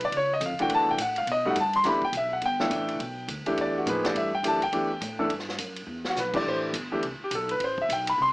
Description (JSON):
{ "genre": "jazz piano trio", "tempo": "208 BPM", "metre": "4/4", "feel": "swing 62% on 8ths", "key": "E minor", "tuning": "A4 = 441 Hz", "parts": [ { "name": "bright upright piano", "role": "melody", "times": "0.0-8.3 s", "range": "E3 to C6", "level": "-24 LUFS", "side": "equal", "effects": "none" }, { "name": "upright bass", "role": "bass", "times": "0.0-8.3 s", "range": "G1 to B2", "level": "-37 LUFS", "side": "equal", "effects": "none" }, { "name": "swinging big-band drum kit", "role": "drums", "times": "0.0-8.3 s", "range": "crash cymbal, hi-hat, kick drum, ride cymbal, snare drum", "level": "-35 LUFS", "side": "equal", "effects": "none" } ], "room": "light reverb", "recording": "small speaker sound", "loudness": "-24 LUFS", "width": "side -23 dB against mid", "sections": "0.0-1.8 A section; 1.8-8.3 A section", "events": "upright piano solo 0.0-8.3; drum fill 5.9", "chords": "0.1 C#7; 0.7 F#m7b5; 1.3 B7b13; 1.8 Em7; 6.5 Am7", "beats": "0.12 0.41 | 0.70 0.98 1.27 1.56 | 1.85 2.13 2.42 2.71 | 3.00 3.29 3.57 3.86 | 4.15 4.44 4.72 5.01 | 5.30 5.59 5.88 6.17 | 6.45 6.74 7.03 7.32 | 7.61 7.90 8.19" }